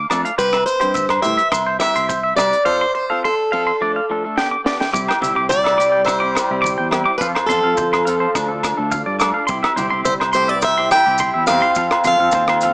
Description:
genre	highlife guitar band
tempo	106 BPM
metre	4/4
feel	straight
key	C major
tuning	A4 = 437 Hz
part	twangy electric guitar	arpeggios	0.0-12.7 s	C5 to D6	-20 LUFS	right 1 dB	slapback echo
part	fingered electric bass	bass	0.0-12.7 s	C2 to A2	-28 LUFS	equal	none
part	clean electric guitar	accompaniment	0.1-12.7 s	F3 to A4	-26 LUFS	left 1 dB	wide subtle chorus
part	compact cocktail drum kit	drums	0.1-12.7 s	hi-hat, kick drum, rim click, snare drum	-24 LUFS	equal	none
part	agogo bells	percussion	0.1-12.6 s	none	-25 LUFS	equal	none
part	maracas	percussion	0.1-12.7 s	none	-32 LUFS	left 1 dB	none
part	picked plugged-in swing-style acoustic guitar	melody	0.4-12.7 s	A4 to G5	-17 LUFS	equal	none
part	congas	percussion	0.4-12.7 s	none	-32 LUFS	equal	none
part	combo organ	sustained chords	5.0-12.7 s	C4 to C5	-29 LUFS	equal	none
part	brilliant trombone	second line	5.5-12.7 s	F3 to E4	-26 LUFS	equal	none
room	moderate spring reverb, RT60 2.4 s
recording	small speaker sound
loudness	-14 LUFS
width	side -25 dB against mid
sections	0.0-4.9 A section; 4.9-12.7 B section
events	drum fill 4.4-4.9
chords	0.4 C; 2.7 F; 3.8 Dm; 4.4 G; 4.9 C; 7.2 F; 8.4 Dm; 9.5 C; 11.8 F

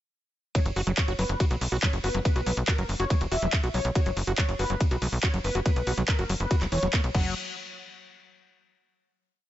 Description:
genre	psychedelic trance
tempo	141 BPM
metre	4/4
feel	straight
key	unclear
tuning	A4 = 438 Hz
part	wide unison lead	melody	0.5-7.3 s	A#4 to F#5	-34 LUFS	left 1 dB	phaser, sidechain pumping, digital delay
part	overdriven acid bass	riff	0.5-7.3 s	E3 to F#4	-33 LUFS	equal	distortion, auto-pan, sidechain pumping, ping-pong delay
part	electronic kick drum	drums	0.5-7.2 s	none	-25 LUFS	equal	none
part	drum and bass drum kit	drums	0.6-7.2 s	crash cymbal, handclaps, hi-hat, ride cymbal	-32 LUFS	equal	none
part	tight sequencer bass	bass	0.7-7.3 s	E1 to B1	-29 LUFS	equal	none
room	little or no reverb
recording	nothing above 7.9 kHz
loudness	-24 LUFS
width	side -13 dB against mid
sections	0.6-7.4 drop; 7.4-9.1 final hit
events	drop 0.6-7.4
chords	0.6 Esus2; 7.1 N.C.

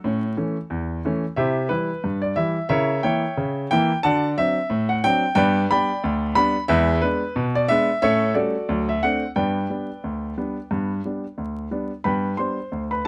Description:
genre	ragtime piano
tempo	90 BPM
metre	2/4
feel	swing 57% on 16ths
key	G major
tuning	A4 = 440 Hz
part	clear baby grand piano	solo	0.0-13.1 s	D2 to C6	-22 LUFS	equal	none
room	little or no reverb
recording	close, detailed microphones, vinyl crackle, faint mains hum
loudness	-22 LUFS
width	mono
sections	0.0-12.0 A section; 12.0-13.1 B section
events	none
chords	0.0 A; 1.4 C; 2.7 C#dim7; 4.0 D7; 5.4 G; 6.7 E7; 8.0 A7; 8.7 D7; 9.4 G

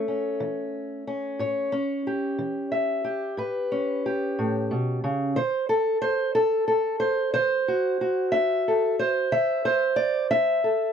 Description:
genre	acoustic country blues, solo or duo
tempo	61 BPM (dotted quarters)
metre	12/8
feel	straight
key	A mixolydian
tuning	A4 = 442 Hz
part	fingerpicked steel-string acoustic guitar	solo	0.0-10.9 s	A2 to E5	-23 LUFS	equal	none
room	moderate booth ambience, RT60 0.2 s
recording	dry, close 1970s-style studio recording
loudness	-23 LUFS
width	side -7 dB against mid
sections	0.0-10.9 A section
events	none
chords	0.0 A7; 5.4 D7

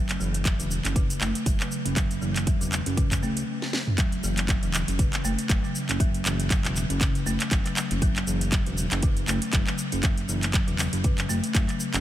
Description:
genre	afro house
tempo	119 BPM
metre	4/4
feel	swing 56% on 16ths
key	F# minor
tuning	A4 = 440 Hz
part	folk marimba with soft mallets	arpeggios	0.0-12.0 s	C#3 to C#4	-29 LUFS	equal	sidechain pumping, diffuse ambient delay
part	smooth synth bass	bass	0.0-12.0 s	E1 to C#2	-30 LUFS	equal	sidechain pumping
part	house drum kit	drums	0.1-12.0 s	cabasa, handclaps, hi-hat, snare drum, toms	-29 LUFS	right 1 dB	none
part	electronic kick drum	drums	0.5-11.7 s	none	-24 LUFS	equal	none
room	light reverb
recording	none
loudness	-23 LUFS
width	side -13 dB against mid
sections	0.0-4.0 A section; 4.0-12.0 B section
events	stop 3.5-4.0; drum fill 3.6-4.0; drop 4.0-12.0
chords	0.0 F#7(no3)

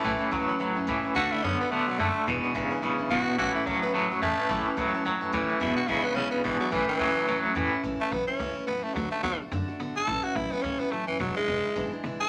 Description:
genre	rockabilly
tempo	215 BPM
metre	4/4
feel	swing 58% on 8ths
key	A major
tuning	A4 = 440 Hz
part	growling tenor saxophone	melody	0.0-12.3 s	E3 to A4	-31 LUFS	equal	none
part	bright upright piano	accompaniment	0.0-7.8 s	B4 to B5	-44 LUFS	equal	none
part	picked steel-string acoustic guitar	accompaniment	0.0-12.3 s	E2 to F#4	-36 LUFS	equal	none
part	twangy electric guitar	riff	0.0-12.3 s	E2 to C4	-31 LUFS	equal	tremolo
part	upright bass	bass	0.0-12.3 s	E1 to B2	-41 LUFS	equal	none
room	moderate club reverb, RT60 0.7 s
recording	none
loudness	-28 LUFS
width	mono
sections	0.0-7.8 A section; 7.8-12.3 B section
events	none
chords	0.0 A; 1.2 D; 2.3 E7; 3.4 A; 5.6 E7; 6.7 A; 9.0 D; 10.1 A; 11.2 E7

